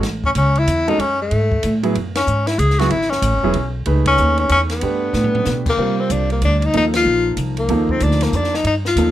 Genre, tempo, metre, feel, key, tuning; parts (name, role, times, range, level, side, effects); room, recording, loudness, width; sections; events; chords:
modal jazz; 188 BPM; 3/4; swing 63% on 8ths; F# dorian, C dorian from 5.8 s; A4 = 439 Hz
clear upright piano; accompaniment; 0.0-9.1 s; F3 to B4; -22 LUFS; right 3 dB
upright bass; bass; 0.0-9.1 s; E1 to C3; -19 LUFS; equal
compact cocktail drum kit; drums; 0.0-9.1 s; crash cymbal, hi-hat, kick drum, ride cymbal, snare drum, toms; -27 LUFS; equal
breathy tenor saxophone; melody; 0.3-9.1 s; A3 to G#4; -18 LUFS; left 2 dB
light reverb; -15 LUFS; side -13 dB against mid
0.0-5.8 A section; 5.8-9.1 B section
band accent 2.1, 4.0, 6.9; drum fill 5.1-5.5
0.0 F#m7; 1.9 C#m; 4.8 G; 5.8 Cm11